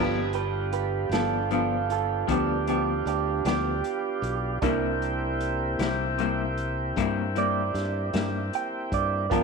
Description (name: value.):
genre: slow blues.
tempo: 51 BPM (dotted quarters).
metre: 12/8.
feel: straight.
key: unclear.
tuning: A4 = 438 Hz.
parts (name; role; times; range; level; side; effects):
electric guitar through a small old amp; second line; 0.0-9.4 s; D4 to G5; -28 LUFS; right 13 dB; none.
clear upright piano; accompaniment; 0.0-9.4 s; B3 to A5; -34 LUFS; right 13 dB; none.
electric guitar through a small old amp; accompaniment; 0.0-9.4 s; G2 to E4; -29 LUFS; left 14 dB; tremolo.
tonewheel organ; sustained chords; 0.0-9.4 s; Bb3 to Ab5; -32 LUFS; left 1 dB; slow rotary speaker.
fingered electric bass; bass; 0.0-9.4 s; G1 to G2; -31 LUFS; equal; none.
vintage drum kit; drums; 0.3-9.4 s; hi-hat, kick drum, snare drum; -34 LUFS; equal; none.
room: light reverb, small room reverb.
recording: 1960s-style stereo with parts hard left and right, faint mains hum.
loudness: -24 LUFS.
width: side -4 dB against mid.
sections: 0.0-9.4 A section.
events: clean electric guitar solo 0.0-9.4.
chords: 0.0 G7; 4.6 C7.